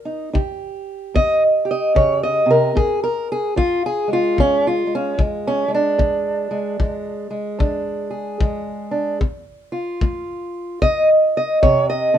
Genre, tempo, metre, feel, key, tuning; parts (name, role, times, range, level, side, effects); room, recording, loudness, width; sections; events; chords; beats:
acoustic country blues, solo or duo; 74 BPM; 4/4; swing 63% on 8ths; Bb mixolydian; A4 = 440 Hz
fingerpicked steel-string acoustic guitar; melody; 0.0-12.2 s; F2 to Eb5; -17 LUFS; right 1 dB
kick drum; drums; 0.3-11.9 s; -19 LUFS; left 2 dB
little or no reverb; minimal, uncompressed stereo recording, faint mains hum; -17 LUFS; side -10 dB against mid
0.0-12.2 A section
steel-string acoustic guitar solo 0.0-12.2
0.0 Eb7; 2.8 Bb7; 9.2 F
0.35 1.16 1.96 | 2.77 3.57 4.38 5.18 | 5.99 6.80 7.60 8.41 | 9.21 10.02 10.82 11.63